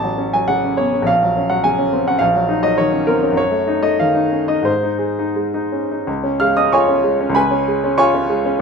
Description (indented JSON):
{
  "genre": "classical, romantic character piece for solo piano",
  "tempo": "85-106 BPM",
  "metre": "2/4",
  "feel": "rubato",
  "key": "Db major",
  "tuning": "A4 = 438 Hz",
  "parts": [
    { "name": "clear grand piano", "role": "solo", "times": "0.0-8.6 s", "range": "A1 to F6", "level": "-14 LUFS", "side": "equal", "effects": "none" }
  ],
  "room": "moderate studio reverb, RT60 0.7 s",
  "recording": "minimal, uncompressed stereo recording",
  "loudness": "-14 LUFS",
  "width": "side -5 dB against mid",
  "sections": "0.0-6.1 A section; 6.1-8.6 B section",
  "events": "none",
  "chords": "0.0 F#m/A; 1.1 Gb/Bb; 2.2 Ebm7/Bb; 3.4 Ebm7b5/Gb; 4.7 Ab; 6.1 Db; 7.4 Db7",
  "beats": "0.48 | 1.07 1.64 | 2.22 2.79 | 3.39 4.02 | 4.69 5.39 | 6.07 6.72 | 7.37 7.99 | 8.60"
}